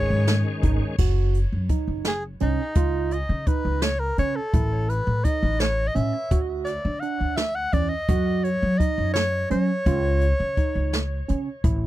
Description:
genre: progressive instrumental, band music in an uneven meter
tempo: 169 BPM (eighths)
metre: 5/8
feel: straight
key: unclear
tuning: A4 = 439 Hz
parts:
  - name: warm soprano saxophone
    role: melody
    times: 0.0-11.2 s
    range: D#4 to F#5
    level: -27 LUFS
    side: left 1 dB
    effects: tape echo
  - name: bright tonewheel organ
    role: accompaniment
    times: 0.0-1.0 s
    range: D#3 to C#4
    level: -29 LUFS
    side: left 3 dB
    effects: overdrive, chorus vibrato, fast rotary speaker
  - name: tine electric piano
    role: arpeggios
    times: 0.0-11.9 s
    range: C#4 to G#4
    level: -29 LUFS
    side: moving between right 6 dB and right 16 dB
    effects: auto-pan
  - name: upright bass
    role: bass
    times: 0.0-11.9 s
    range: F#1 to F#3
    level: -24 LUFS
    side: equal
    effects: none
  - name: jazz brush drum kit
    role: drums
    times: 0.3-11.8 s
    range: crash cymbal, hi-hat, kick drum, snare drum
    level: -24 LUFS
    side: equal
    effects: none
room: little or no reverb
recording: dry, close 1970s-style studio recording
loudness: -21 LUFS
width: side -14 dB against mid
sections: 1.0-11.9 A section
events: soprano saxophone solo 1.0-11.9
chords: 0.0 G#sus4; 1.0 F#5; 2.8 C#sus2; 4.5 A5; 6.3 D; 8.1 F#5; 9.9 C#sus2

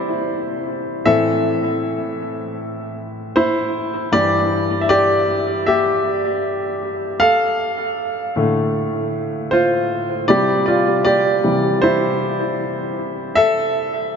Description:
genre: pop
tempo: 78 BPM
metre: 4/4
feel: straight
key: C major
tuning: A4 = 440 Hz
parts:
  - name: clear baby grand piano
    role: solo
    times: 0.0-14.2 s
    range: G2 to F5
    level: -16 LUFS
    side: equal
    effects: analog delay
room: wet cathedral reverb, RT60 6.2 s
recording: dreamy mix soaked in reverb, nothing above 7.5 kHz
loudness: -16 LUFS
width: side -6 dB against mid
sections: 0.0-14.2 A section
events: grand piano solo 0.0-14.2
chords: 0.0 Cadd9; 1.1 Am; 4.1 Em7/G; 7.2 F6/A; 10.3 Cadd9; 13.4 A5

